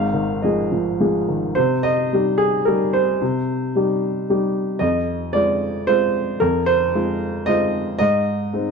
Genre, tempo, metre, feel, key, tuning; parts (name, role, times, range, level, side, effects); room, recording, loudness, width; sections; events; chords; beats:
neoclassical minimalist piano; 112 BPM; 3/4; rubato; C minor; A4 = 436 Hz
warm upright piano; solo; 0.0-8.7 s; Ab1 to F5; -17 LUFS; equal
little or no reverb; dark, warm production; -17 LUFS; side -5 dB against mid
0.0-1.6 A section; 1.6-8.7 B section
0.0 Fm7/Ab; 1.6 Cm; 4.8 Fm7; 8.0 Ab
0.43 1.00 | 1.56 2.12 2.66 | 3.21 3.75 4.28 | 4.81 5.34 5.88 | 6.41 6.95 7.47 | 8.01 8.54